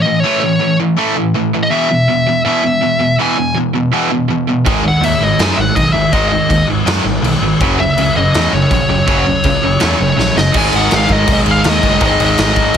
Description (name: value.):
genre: punk rock.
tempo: 163 BPM.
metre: 4/4.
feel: straight.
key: unclear.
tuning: A4 = 440 Hz.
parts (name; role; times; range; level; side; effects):
high-gain lead guitar; melody; 0.0-12.8 s; C#5 to G#5; -15 LUFS; left 1 dB; distortion.
distorted electric guitar; riff; 0.0-12.8 s; E2 to A3; -18 LUFS; left 10 dB; overdrive.
distorted electric guitar; riff; 0.0-12.8 s; E2 to A3; -17 LUFS; right 11 dB; overdrive.
growling picked electric bass; bass; 4.7-12.8 s; F#1 to F#2; -18 LUFS; equal; overdrive.
raw garage drum kit; drums; 4.7-12.8 s; crash cymbal, kick drum, snare drum; -16 LUFS; equal; none.
room: little or no reverb.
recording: heavily compressed radio sound.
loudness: -11 LUFS.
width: side -8 dB against mid.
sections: 0.0-10.6 A section; 10.6-12.8 B section.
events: half time 0.0-10.6; drum fill 10.2-10.6.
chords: 0.0 A; 1.7 E5; 4.7 G#5; 7.6 F#5; 10.6 G#5.